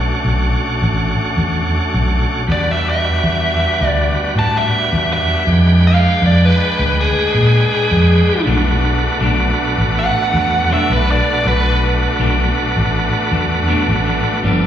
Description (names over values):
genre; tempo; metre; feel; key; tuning
blues; 80 BPM; 4/4; straight; B minor; A4 = 440 Hz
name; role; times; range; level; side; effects
bright tonewheel organ; accompaniment; 0.0-14.7 s; F3 to G5; -18 LUFS; right 1 dB; slow rotary speaker, overdrive, slapback echo
vintage muted fingered electric bass; bass; 0.0-14.7 s; G1 to A#2; -15 LUFS; equal; none
biting lead guitar; melody; 2.5-11.8 s; Ab4 to A5; -18 LUFS; left 1 dB; overdrive, slapback echo, analog delay
clean electric guitar; stabs; 8.5-14.7 s; G2 to D4; -21 LUFS; left 2 dB; none
room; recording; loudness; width
light reverb, digital ambience; live gig heard through the venue's PA, recital hall reverb, studio reverb; -13 LUFS; side -10 dB against mid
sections
0.0-14.7 A section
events
none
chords
0.0 Bm7; 2.5 Em7; 5.5 Fdim7; 8.5 Bm7